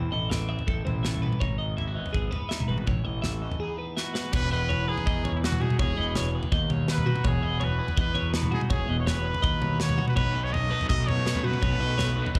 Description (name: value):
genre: math rock and midwest emo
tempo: 165 BPM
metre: 4/4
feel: straight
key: E major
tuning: A4 = 440 Hz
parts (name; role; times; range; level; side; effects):
- electric guitar at the edge of break-up; accompaniment; 0.0-12.4 s; E2 to B4; -38 LUFS; equal; phaser
- twelve-string electric guitar; arpeggios; 0.0-12.4 s; F#4 to E5; -36 LUFS; equal; slapback echo, tape echo
- fuzz fingered electric bass; bass; 0.0-12.4 s; E1 to B2; -31 LUFS; equal; overdrive
- modern studio drum kit; drums; 0.3-12.4 s; crash cymbal, kick drum, snare drum, toms; -31 LUFS; equal; none
- bright trumpet; melody; 4.0-12.4 s; E4 to D#5; -34 LUFS; equal; slapback echo, tape echo
- crunchy overdriven guitar; riff; 10.2-12.4 s; B2 to D#4; -38 LUFS; equal; tremolo, slapback echo
room: little or no reverb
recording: live gig heard through the venue's PA, club reverb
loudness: -27 LUFS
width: mono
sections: 0.0-4.3 A section; 4.3-12.4 B section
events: drum fill 4.0-4.3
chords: 0.0 Amadd9; 1.4 Emaj9/G#; 2.9 A; 3.6 Emaj9; 4.3 Emaj7; 10.2 B7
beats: 0.31 0.67 1.04 | 1.41 1.77 2.14 2.51 | 2.87 3.24 3.60 3.97 | 4.34 4.70 5.07 5.43 | 5.79 6.16 6.52 6.89 | 7.25 7.62 7.98 8.35 | 8.71 9.07 9.44 9.80 | 10.16 10.53 10.89 11.26 | 11.62 11.98 12.35